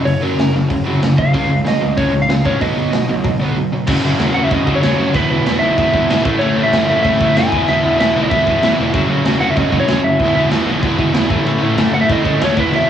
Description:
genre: punk rock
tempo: 190 BPM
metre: 4/4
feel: straight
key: unclear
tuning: A4 = 440 Hz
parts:
  - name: overdriven electric guitar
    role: riff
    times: 0.0-12.9 s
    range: E2 to C#4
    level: -18 LUFS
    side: left 4 dB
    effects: cassette tape
  - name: tight distorted guitar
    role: riff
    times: 0.0-12.9 s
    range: F#2 to F#4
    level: -24 LUFS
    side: right 11 dB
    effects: distortion, cassette tape
  - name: fuzz picked electric bass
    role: bass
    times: 0.0-12.9 s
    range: E1 to C#3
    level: -23 LUFS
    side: right 2 dB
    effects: overdrive
  - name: lightly driven lead guitar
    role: melody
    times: 0.1-12.9 s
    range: A#4 to G#5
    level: -18 LUFS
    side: right 1 dB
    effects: cassette tape, tape echo
  - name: raw garage drum kit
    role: drums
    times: 0.1-12.8 s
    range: crash cymbal, hi-hat, kick drum, snare drum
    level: -18 LUFS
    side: right 1 dB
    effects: cassette tape
  - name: high-gain distorted guitar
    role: riff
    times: 3.9-12.9 s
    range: E2 to A3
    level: -23 LUFS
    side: right 2 dB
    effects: distortion, cassette tape
room: little or no reverb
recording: home recording on cassette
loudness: -12 LUFS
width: side -9 dB against mid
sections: 0.0-3.9 A section; 3.9-12.9 B section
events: none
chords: 0.0 F#; 1.3 C#; 2.6 B; 3.9 F#; 5.2 E; 6.3 A; 7.5 E; 8.9 F#; 10.2 E; 11.3 A

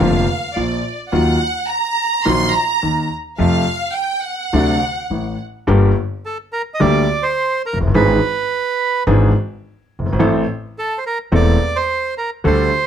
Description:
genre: tango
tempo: 106 BPM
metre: 4/4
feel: rubato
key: unclear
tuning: A4 = 440 Hz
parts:
  - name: warm studio violin section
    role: second line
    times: 0.0-5.4 s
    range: D5 to C6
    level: -20 LUFS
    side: right 2 dB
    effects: none
  - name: warm concert grand piano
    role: accompaniment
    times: 0.0-12.7 s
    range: E1 to A4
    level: -17 LUFS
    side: left 1 dB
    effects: none
  - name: upright bass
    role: bass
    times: 0.0-12.7 s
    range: E1 to F2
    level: -19 LUFS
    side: equal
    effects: none
  - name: bandoneon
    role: melody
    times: 6.3-12.9 s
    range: A4 to Eb5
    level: -18 LUFS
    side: right 4 dB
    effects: none
room: light reverb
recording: close, detailed microphones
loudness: -15 LUFS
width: side -9 dB against mid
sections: 0.0-5.7 A section; 5.7-12.9 B section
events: violin section solo 0.0-5.7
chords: 0.0 Bbadd9; 1.1 Ebmadd9; 3.4 F; 4.5 D7; 5.7 Gm; 7.9 E7/G#; 10.2 Am

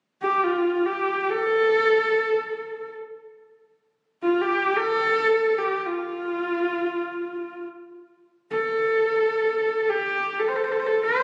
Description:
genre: mongolian traditional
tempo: free time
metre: none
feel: none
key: unclear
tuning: A4 = 440 Hz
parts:
  - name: clear horsehead fiddle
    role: melody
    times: 0.2-11.2 s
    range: F4 to C5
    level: -24 LUFS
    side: equal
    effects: slapback echo
room: wet recital hall reverb, RT60 1.8 s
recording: recorded on a phone in the room, club reverb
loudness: -24 LUFS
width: mono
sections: 0.0-11.2 A section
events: none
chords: none

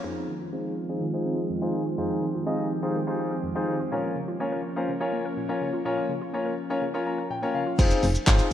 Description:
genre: dance-pop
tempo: 124 BPM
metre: 4/4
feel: straight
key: unclear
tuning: A4 = 440 Hz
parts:
  - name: clear concert grand piano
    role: accompaniment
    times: 0.0-8.5 s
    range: C4 to Bb5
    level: -28 LUFS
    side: left 2 dB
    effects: sidechain pumping, low-pass filter
  - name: airy breathy pad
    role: sustained chords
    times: 0.0-7.7 s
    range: Eb3 to G4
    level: -31 LUFS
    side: right 2 dB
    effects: chorus, sidechain pumping, low-pass filter
  - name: hollow square pluck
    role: arpeggios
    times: 0.0-7.8 s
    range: F2 to Bb4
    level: -36 LUFS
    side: right 2 dB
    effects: chorus, sidechain pumping, low-pass filter, digital delay
  - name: solid FM bass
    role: bass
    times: 7.8-8.4 s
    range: F1 to Ab1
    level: -25 LUFS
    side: equal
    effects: sidechain pumping
  - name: deep house drum kit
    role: drums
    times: 7.8-8.5 s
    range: crash cymbal, handclaps, hi-hat, kick drum, shaker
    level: -21 LUFS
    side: equal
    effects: none
room: moderate lush hall reverb, RT60 2.4 s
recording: rough home demo mix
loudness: -25 LUFS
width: side -11 dB against mid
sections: 0.0-7.8 A section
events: filter sweep 0.0-7.8; grand piano fill 6.8-7.8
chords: 0.0 Fm7; 3.9 Bbm; 7.8 Fm7

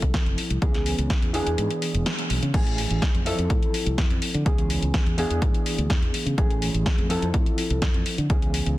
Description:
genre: filtered disco house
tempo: 125 BPM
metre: 4/4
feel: straight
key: unclear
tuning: A4 = 440 Hz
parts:
  - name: overdriven reed electric piano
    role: accompaniment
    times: 0.0-8.8 s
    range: E3 to A4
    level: -28 LUFS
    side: equal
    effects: fast tremolo, phaser, sidechain pumping, low-pass filter
  - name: modern bright fingered electric bass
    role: bass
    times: 0.0-8.7 s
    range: E1 to D3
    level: -26 LUFS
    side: equal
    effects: sidechain pumping, low-pass filter
  - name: electronic kick drum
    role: drums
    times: 0.0-8.4 s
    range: none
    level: -23 LUFS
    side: equal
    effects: overdrive
  - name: house drum kit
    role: drums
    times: 0.0-8.8 s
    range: crash cymbal, hi-hat, snare drum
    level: -30 LUFS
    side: left 1 dB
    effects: sidechain pumping on hats, sidechain pumping on cymbals
room: digital ambience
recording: dense, heavily limited modern master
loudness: -21 LUFS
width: side -16 dB against mid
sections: 0.0-2.5 A section; 2.5-8.8 B section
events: kick drops out 1.6-2.5; band accent 2.1; drop 2.5-8.8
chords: 0.0 Fmaj7; 0.6 C#m7; 1.3 E7; 2.5 Amaj7; 3.3 Fmaj7; 4.5 C#m7; 5.2 E7; 6.4 Amaj7; 7.1 Fmaj7

